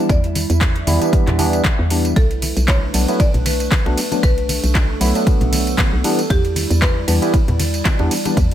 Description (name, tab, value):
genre	deep house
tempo	116 BPM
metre	4/4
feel	swing 56% on 16ths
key	unclear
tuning	A4 = 441 Hz
part	buzzing marimba with hard mallets	melody	0.0-8.5 s	G4 to E5	-28 LUFS	left 2 dB	tape echo
part	warbly tape-like pad	sustained chords	0.0-8.5 s	G3 to E5	-25 LUFS	right 3 dB	chorus, built-in reverb, sidechain pumping
part	tine electric piano	stabs	0.0-8.4 s	E3 to E4	-21 LUFS	equal	overdrive, phaser, sidechain pumping, ping-pong delay
part	hollow knocking FM bass	bass	0.1-8.5 s	B1 to E2	-19 LUFS	equal	sidechain pumping
part	deep house drum kit	drums	0.1-8.5 s	handclaps, hi-hat, ride cymbal, tambourine	-23 LUFS	equal	overdrive
part	electronic kick drum	drums	0.1-8.5 s	none	-16 LUFS	equal	overdrive
part	congas	percussion	0.4-8.3 s	none	-27 LUFS	left 2 dB	none
room	light reverb, digital ambience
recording	none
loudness	-14 LUFS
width	side -11 dB against mid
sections	0.0-8.5 A section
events	none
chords	0.0 Em7; 2.2 Bm7; 6.0 Em7